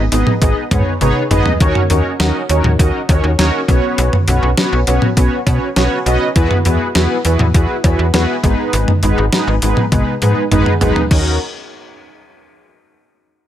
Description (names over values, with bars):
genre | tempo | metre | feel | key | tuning
synth-pop | 101 BPM | 4/4 | straight | Eb phrygian | A4 = 440 Hz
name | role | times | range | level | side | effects
mellow synth brass | accompaniment | 0.0-11.4 s | Ab3 to Eb5 | -16 LUFS | equal | chorus
slap-like FM bass | bass | 0.0-11.4 s | Ab1 to B2 | -15 LUFS | equal | none
clean 12-bit digital drum machine | drums | 0.1-11.2 s | cowbell, crash cymbal, hi-hat, kick drum, snare drum, toms | -16 LUFS | equal | overdrive
room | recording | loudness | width
little or no reverb | none | -12 LUFS | side -11 dB against mid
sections
0.0-11.1 A section; 11.1-13.5 B section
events
drum fill 1.0-1.6, 9.9-11.1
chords
0.0 Abm; 1.6 Ebm7; 3.7 Bsus2; 6.4 Eadd9; 8.4 Abm; 11.1 Ebm7